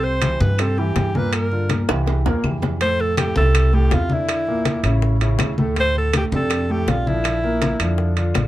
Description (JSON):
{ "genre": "Afro-Cuban jazz", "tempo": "162 BPM", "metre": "4/4", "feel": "straight", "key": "unclear", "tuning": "A4 = 440 Hz", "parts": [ { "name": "clear alto saxophone", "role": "melody", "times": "0.0-8.2 s", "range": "E4 to C5", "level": "-23 LUFS", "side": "equal", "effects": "none" }, { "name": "warm concert grand piano", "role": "accompaniment", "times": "0.0-8.5 s", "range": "A2 to C5", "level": "-24 LUFS", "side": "right 1 dB", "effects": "none" }, { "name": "upright bass", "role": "bass", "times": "0.0-8.5 s", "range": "A1 to G2", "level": "-20 LUFS", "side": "equal", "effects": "none" }, { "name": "bongos", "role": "percussion", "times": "0.0-8.5 s", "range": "none", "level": "-29 LUFS", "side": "left 7 dB", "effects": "none" }, { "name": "congas", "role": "percussion", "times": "0.0-8.5 s", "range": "none", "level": "-25 LUFS", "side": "left 2 dB", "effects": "none" }, { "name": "claves", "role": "percussion", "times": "0.2-8.5 s", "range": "none", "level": "-32 LUFS", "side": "left 4 dB", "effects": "none" }, { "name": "timbales", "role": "percussion", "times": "0.2-8.5 s", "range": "none", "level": "-27 LUFS", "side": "right 6 dB", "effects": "none" } ], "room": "light reverb", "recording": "dark, warm production", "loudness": "-17 LUFS", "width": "side -15 dB against mid", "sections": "0.0-2.8 A section; 2.8-8.5 B section", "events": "drum fill 1.9-2.8", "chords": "0.0 C; 1.3 Gm7; 2.1 C7; 2.8 Fmaj7; 4.3 Bbmaj7#11; 5.0 A; 5.8 Dm7; 7.2 Bb" }